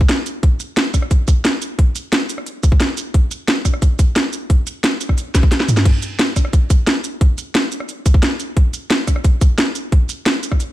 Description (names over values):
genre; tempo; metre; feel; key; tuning
drum and bass; 177 BPM; 4/4; straight; none; none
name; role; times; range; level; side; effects
electronic kick drum; drums; 0.0-10.6 s; none; -13 LUFS; equal; studio reverb
drum and bass drum kit; drums; 0.1-10.7 s; crash cymbal, hi-hat, rim click, shaker, snare drum, toms; -18 LUFS; equal; studio reverb
room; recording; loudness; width
digital ambience; dark, warm production; -14 LUFS; side -15 dB against mid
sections
0.0-10.7 A section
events
drum fill 5.3-5.9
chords
none